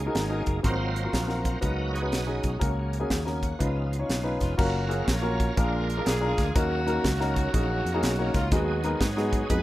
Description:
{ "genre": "uptempo gospel", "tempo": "122 BPM", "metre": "4/4", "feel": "swing 64% on 8ths", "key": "F# major", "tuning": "A4 = 440 Hz", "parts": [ { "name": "bright tonewheel organ", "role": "sustained chords", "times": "0.0-9.6 s", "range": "E#3 to E#5", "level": "-35 LUFS", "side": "right 2 dB", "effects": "slow rotary speaker, chorus vibrato" }, { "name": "fingered electric bass", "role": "bass", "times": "0.0-9.6 s", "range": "E#1 to G#2", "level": "-29 LUFS", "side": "equal", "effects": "none" }, { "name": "warm baby grand piano", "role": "accompaniment", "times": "0.1-9.6 s", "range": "G#2 to C#5", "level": "-29 LUFS", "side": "left 1 dB", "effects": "none" }, { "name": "crisp fusion drum kit", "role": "drums", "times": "0.1-9.6 s", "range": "crash cymbal, hi-hat, kick drum, snare drum", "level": "-28 LUFS", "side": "equal", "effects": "none" }, { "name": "clear saxophone section", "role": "melody", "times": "4.4-9.6 s", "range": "A#3 to C#5", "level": "-32 LUFS", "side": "equal", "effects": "none" } ], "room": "light reverb", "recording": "rough home demo mix", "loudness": "-24 LUFS", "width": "side -15 dB against mid", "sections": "0.0-4.6 A section; 4.6-9.6 B section", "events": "tonewheel organ solo 0.0-4.6", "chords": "0.0 F#69; 0.6 G#13; 1.6 C#9sus4; 2.6 F#/C#; 3.6 C#9; 4.6 F#maj7; 5.6 A#7; 6.6 D#m7; 8.5 G#m7/D#", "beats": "0.15 | 0.65 1.14 1.63 2.12 | 2.62 3.11 3.60 4.10 | 4.59 5.08 5.57 6.06 | 6.56 7.05 7.54 8.03 | 8.52 9.01 9.51" }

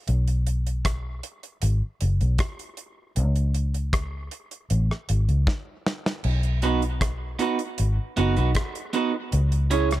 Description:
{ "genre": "dub reggae", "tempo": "78 BPM", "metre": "4/4", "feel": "straight", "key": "unclear", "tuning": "A4 = 441 Hz", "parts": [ { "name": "vintage muted fingered electric bass", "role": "bass", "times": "0.1-10.0 s", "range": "F#1 to C#2", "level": "-22 LUFS", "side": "equal", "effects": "none" }, { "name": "damped 70s drum kit", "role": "drums", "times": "0.1-10.0 s", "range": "crash cymbal, hi-hat, kick drum, rim click, snare drum", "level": "-28 LUFS", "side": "equal", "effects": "none" }, { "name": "electric guitar at the edge of break-up", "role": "accompaniment", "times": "6.6-9.9 s", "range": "B3 to C#5", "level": "-25 LUFS", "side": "right 6 dB", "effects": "dub echo" } ], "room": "studio reverb", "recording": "none", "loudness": "-22 LUFS", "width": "side -14 dB against mid", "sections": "0.0-10.0 A section", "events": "break 0.0-6.2; drum fill 5.5-6.2", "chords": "0.1 B5; 3.2 C#5; 6.2 B; 9.3 C#m", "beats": "| 0.08 0.85 1.62 2.39 | 3.16 3.93 4.70 5.47 | 6.24 7.01 7.79 8.56 | 9.33" }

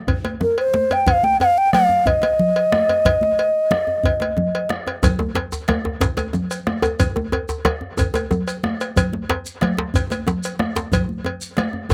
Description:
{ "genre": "west african traditional, West African drum ensemble", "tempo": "122 BPM (dotted quarters)", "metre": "12/8", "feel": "straight", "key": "Eb major pentatonic", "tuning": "A4 = 440 Hz", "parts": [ { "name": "bombo", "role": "percussion", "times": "0.1-11.9 s", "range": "none", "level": "-28 LUFS", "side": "equal", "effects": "none" }, { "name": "congas", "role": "percussion", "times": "0.1-11.9 s", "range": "none", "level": "-26 LUFS", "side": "equal", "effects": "none" }, { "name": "cowbell", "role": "percussion", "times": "0.1-11.9 s", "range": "none", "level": "-28 LUFS", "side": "equal", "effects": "slapback echo" }, { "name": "djembe", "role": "percussion", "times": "0.1-11.9 s", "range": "none", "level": "-28 LUFS", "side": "equal", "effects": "none" }, { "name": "mellow alto ocarina", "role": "melody", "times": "0.4-4.7 s", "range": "Bb4 to G5", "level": "-18 LUFS", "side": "equal", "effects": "none" }, { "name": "djembe", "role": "percussion", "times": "5.0-11.9 s", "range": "none", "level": "-25 LUFS", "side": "equal", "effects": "none" }, { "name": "shekere", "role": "percussion", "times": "5.0-11.9 s", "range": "none", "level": "-32 LUFS", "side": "equal", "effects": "none" } ], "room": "light reverb", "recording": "recorded outdoors, with no room sound", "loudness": "-20 LUFS", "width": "mono", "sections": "0.0-5.0 A section; 5.0-11.9 B section", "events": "none", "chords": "none", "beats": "0.08 0.57 | 1.07 1.57 2.06 2.56 | 3.05 3.54 4.04 4.53 | 5.03 5.52 6.01 6.50 | 7.00 7.49 7.98 8.47 | 8.96 9.46 9.95 10.44 | 10.93 11.41 11.90" }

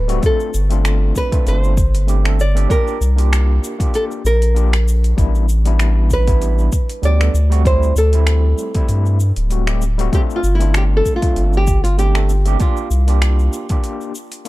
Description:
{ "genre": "sunset chillout", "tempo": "97 BPM", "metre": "4/4", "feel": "swing 55% on 16ths", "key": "unclear", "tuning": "A4 = 440 Hz", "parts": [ { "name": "nylon-string guitar", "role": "melody", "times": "0.0-14.4 s", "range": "E4 to D5", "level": "-22 LUFS", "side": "equal", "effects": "tape echo" }, { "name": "round analog bass", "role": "bass", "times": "0.0-13.5 s", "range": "D1 to G2", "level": "-14 LUFS", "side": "equal", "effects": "none" }, { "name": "overdriven tine electric piano", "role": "accompaniment", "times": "0.1-14.5 s", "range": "G3 to A4", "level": "-25 LUFS", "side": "moving between left 11 dB and right 10 dB", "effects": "fast tremolo, auto-pan, tape echo" }, { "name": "deep house drum kit", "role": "drums", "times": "0.1-14.5 s", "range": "cabasa, finger snaps, hi-hat", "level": "-26 LUFS", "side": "equal", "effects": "small room ambience" }, { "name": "electronic kick drum", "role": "drums", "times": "0.2-13.8 s", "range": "none", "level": "-17 LUFS", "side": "equal", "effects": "small room ambience" } ], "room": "little or no reverb", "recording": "dark, warm production", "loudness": "-13 LUFS", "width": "side -18 dB against mid", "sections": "0.0-14.5 A section", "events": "none", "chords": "0.2 G9sus4; 2.7 C9sus4; 5.2 A9sus4; 7.3 D9sus4; 10.1 G9sus4; 12.6 C9sus4", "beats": "| 0.23 0.85 1.47 2.09 | 2.71 3.33 3.94 4.56 | 5.18 5.80 6.42 7.04 | 7.66 8.27 8.89 9.51 | 10.13 10.75 11.37 11.98 | 12.60 13.22 13.84 14.46" }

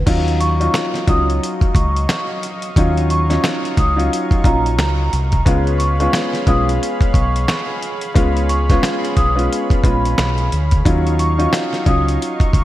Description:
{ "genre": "hip hop, boom-bap hip-hop", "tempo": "89 BPM", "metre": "4/4", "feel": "swing 59% on 16ths", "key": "Eb minor", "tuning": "A4 = 440 Hz", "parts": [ { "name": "vibraphone with soft mallets", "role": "melody", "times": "0.0-12.6 s", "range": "Bb5 to Eb6", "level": "-23 LUFS", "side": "right 1 dB", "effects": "high-pass filter, low-pass filter, digital delay" }, { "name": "deep dub fingered electric bass", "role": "bass", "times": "0.0-12.6 s", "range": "Bb1 to Eb2", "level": "-18 LUFS", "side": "equal", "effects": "none" }, { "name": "dark upright piano", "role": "accompaniment", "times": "0.1-12.6 s", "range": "Gb3 to F4", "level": "-20 LUFS", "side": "left 1 dB", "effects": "high-pass filter, low-pass filter" }, { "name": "warm analog pad", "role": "sustained chords", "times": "0.1-12.6 s", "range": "Gb3 to Db6", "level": "-28 LUFS", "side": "right 1 dB", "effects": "chorus, high-pass filter, low-pass filter" }, { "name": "dusty soul sampler-style drum kit", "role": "drums", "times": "0.1-12.6 s", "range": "crash cymbal, hi-hat, kick drum, snare drum", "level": "-18 LUFS", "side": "equal", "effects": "none" } ], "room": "moderate lush hall reverb, RT60 2.5 s", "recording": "bright 1980s-style digital production, vinyl crackle", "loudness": "-14 LUFS", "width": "side -14 dB against mid", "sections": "0.1-12.6 A section", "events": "none", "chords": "0.1 Ebm9; 5.5 Db7; 10.9 Ebm9", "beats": "| 0.07 0.74 1.42 2.09 | 2.76 3.44 4.11 4.79 | 5.46 6.13 6.81 7.48 | 8.16 8.83 9.51 10.18 | 10.85 11.53 12.20" }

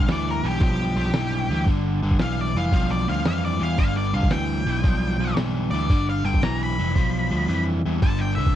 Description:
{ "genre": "blues rock power trio and southern rock", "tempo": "113 BPM", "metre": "4/4", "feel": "swing 68% on 8ths", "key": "G mixolydian", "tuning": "A4 = 440 Hz", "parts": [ { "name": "octave-fuzz lead guitar", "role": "melody", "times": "0.0-8.5 s", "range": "G4 to B5", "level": "-28 LUFS", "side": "left 2 dB", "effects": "distortion" }, { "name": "overdriven electric guitar", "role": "riff", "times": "0.0-8.5 s", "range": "G2 to F3", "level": "-25 LUFS", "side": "equal", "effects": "none" }, { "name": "picked electric bass", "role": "bass", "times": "0.0-8.5 s", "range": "F1 to F2", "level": "-25 LUFS", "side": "equal", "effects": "none" }, { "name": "lo-fi sampler-style drum kit", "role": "drums", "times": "0.1-8.5 s", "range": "hi-hat, kick drum, snare drum", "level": "-21 LUFS", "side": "equal", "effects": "none" } ], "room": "little or no reverb", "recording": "dry, close 1970s-style studio recording", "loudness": "-20 LUFS", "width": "side -11 dB against mid", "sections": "0.0-8.6 A section", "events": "lead electric guitar solo 0.0-8.6; kick and snare drop out 7.5-8.0", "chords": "0.0 G", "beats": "0.09 0.61 1.14 | 1.67 2.20 2.73 3.26 | 3.79 4.32 4.85 5.38 | 5.91 6.44 6.96 7.49 | 8.02" }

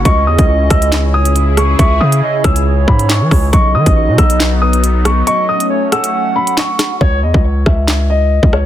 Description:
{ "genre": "hip hop, drill", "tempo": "138 BPM", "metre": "4/4", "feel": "half-time", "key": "C# minor", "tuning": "A4 = 440 Hz", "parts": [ { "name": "dark baby grand piano", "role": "melody", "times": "0.0-8.7 s", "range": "C#5 to E6", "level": "-17 LUFS", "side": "left 2 dB", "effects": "low-pass filter, digital delay" }, { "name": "sweeping resonant pad", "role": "sustained chords", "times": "0.0-7.0 s", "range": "C#3 to G#4", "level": "-19 LUFS", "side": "left 1 dB", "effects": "chorus" }, { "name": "distorted 808-style bass", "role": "bass", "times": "0.0-8.7 s", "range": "A1 to E3", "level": "-13 LUFS", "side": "equal", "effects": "distortion" }, { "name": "hollow clarinet-like synth lead", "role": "second line", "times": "0.1-7.0 s", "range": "B4 to F#5", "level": "-20 LUFS", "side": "right 5 dB", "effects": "chorus, digital delay" }, { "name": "drill drum kit", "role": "drums", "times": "0.1-8.6 s", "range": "handclaps, hi-hat, kick drum, rim click, snare drum", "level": "-13 LUFS", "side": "equal", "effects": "none" } ], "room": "little or no reverb", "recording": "dense, heavily limited modern master", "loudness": "-10 LUFS", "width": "side -12 dB against mid", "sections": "0.0-7.0 A section; 7.0-8.7 B section", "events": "break 5.3-7.0; hi-hats muted 7.0-8.7", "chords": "0.1 C#m; 3.5 B; 5.3 F#m; 7.0 C#m", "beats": "| 0.05 0.49 0.92 1.36 | 1.79 2.23 2.66 3.10 | 3.53 3.96 4.40 4.83 | 5.27 5.71 6.14 6.57 | 7.01 7.44 7.88 8.31" }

